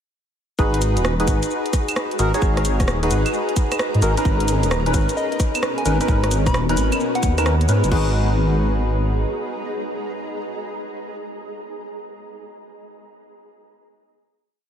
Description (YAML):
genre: UK garage, two-step garage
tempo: 131 BPM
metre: 4/4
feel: swing 66% on 16ths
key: unclear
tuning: A4 = 440 Hz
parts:
  - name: percussive organ stab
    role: stabs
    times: 0.6-11.2 s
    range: C#4 to C#5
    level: -23 LUFS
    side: equal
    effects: ensemble chorus, ping-pong delay
  - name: dark detuned saw bass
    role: bass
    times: 0.6-9.2 s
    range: D#1 to G#2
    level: -20 LUFS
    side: equal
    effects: tube saturation
  - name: electronic kick drum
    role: drums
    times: 0.6-8.0 s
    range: none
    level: -20 LUFS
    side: equal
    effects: overdrive, studio reverb
  - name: garage drum kit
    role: drums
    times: 0.6-8.0 s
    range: claves, crash cymbal, hi-hat, rim click, shaker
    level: -27 LUFS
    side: right 1 dB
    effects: overdrive, studio reverb
  - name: granular cloud pad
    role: texture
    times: 1.6-11.3 s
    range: B3 to A#5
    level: -30 LUFS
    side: equal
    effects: built-in reverb, ensemble chorus, sidechain pumping
  - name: soft struck synth lead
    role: melody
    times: 5.2-7.3 s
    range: D#5 to B5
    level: -30 LUFS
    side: left 2 dB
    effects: chorus, ping-pong delay
room: light reverb, digital ambience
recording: none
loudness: -18 LUFS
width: side -8 dB against mid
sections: 0.6-7.9 drop; 7.9-11.6 final chord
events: drop 0.6-7.9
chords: 0.6 Bmaj9; 7.9 G#m7